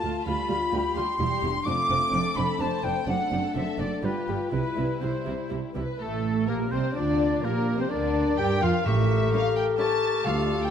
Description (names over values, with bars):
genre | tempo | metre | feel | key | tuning
quick classical-period movement for symphony orchestra | 127 BPM | 3/4 | straight | C major, D minor from 6.0 s | A4 = 440 Hz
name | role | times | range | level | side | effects
dark studio violin section | melody | 0.0-10.7 s | E4 to A5 | -33 LUFS | left 3 dB | none
silver concert flute | second line | 0.0-10.7 s | A4 to D6 | -31 LUFS | left 1 dB | none
warm studio violin section | second line | 0.0-9.9 s | A3 to D6 | -36 LUFS | left 3 dB | none
dark studio viola section | accompaniment | 0.0-9.9 s | G3 to G4 | -33 LUFS | right 1 dB | none
mellow French horn section | sustained chords | 0.0-10.7 s | G3 to Bb4 | -30 LUFS | left 6 dB | none
warm studio cello section | bass | 0.0-10.6 s | D2 to G3 | -32 LUFS | right 4 dB | none
warm studio double bass section | bass | 0.0-10.7 s | E1 to G2 | -31 LUFS | right 4 dB | none
clear clarinet | second line | 6.0-10.7 s | A3 to G4 | -32 LUFS | equal | none
warm oboe | second line | 6.0-10.7 s | A4 to G5 | -36 LUFS | right 1 dB | none
timpani | percussion | 8.9-10.7 s | A2 to D3 | -32 LUFS | equal | none
room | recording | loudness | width
moderate scoring stage reverb, RT60 1.8 s | none | -23 LUFS | side -8 dB against mid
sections
0.0-6.0 A section; 6.0-10.7 B section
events
none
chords
0.3 G7/D; 1.2 C/E; 1.7 Dm7/F; 3.1 D7/F#; 4.0 G7; 4.5 C; 6.0 Dm/A; 7.4 Gm/Bb; 8.8 A7b9